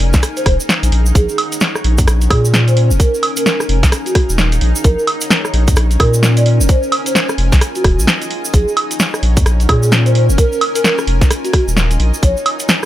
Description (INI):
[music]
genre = UK garage, two-step garage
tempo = 130 BPM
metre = 4/4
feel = swing 61% on 16ths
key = Bb minor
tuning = A4 = 440 Hz
[part]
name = saturated sub bass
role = bass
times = 0.0-12.3 s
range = Eb1 to Bb2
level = -13 LUFS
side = equal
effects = none
[part]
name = punchy analog drum machine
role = drums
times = 0.0-12.9 s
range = hi-hat, rim click, snare drum, woodblock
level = -16 LUFS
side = right 1 dB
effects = none
[part]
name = granular cloud pad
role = texture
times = 0.0-12.9 s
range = Eb4 to Ab5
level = -23 LUFS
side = left 2 dB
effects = built-in reverb, sidechain pumping
[part]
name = electronic kick drum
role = drums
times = 0.1-12.3 s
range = none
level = -13 LUFS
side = equal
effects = none
[part]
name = tube shaker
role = percussion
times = 0.1-12.9 s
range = none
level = -25 LUFS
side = right 3 dB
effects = none
[part]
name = vibraphone with soft mallets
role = melody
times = 0.4-12.4 s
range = Gb4 to D5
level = -20 LUFS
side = right 1 dB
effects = digital delay
[sound]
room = little or no reverb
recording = none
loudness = -11 LUFS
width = side -14 dB against mid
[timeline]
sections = 0.0-12.9 A section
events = kick drops out 0.7-1.2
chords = 0.2 Ebm7; 1.2 Bbm7; 2.8 Fm7; 3.9 Ebm7; 4.8 Bbm7; 6.5 Fm7; 7.6 Ebm7; 8.5 Bbm7; 10.2 Fm7; 11.3 Ebm7; 12.2 Bbm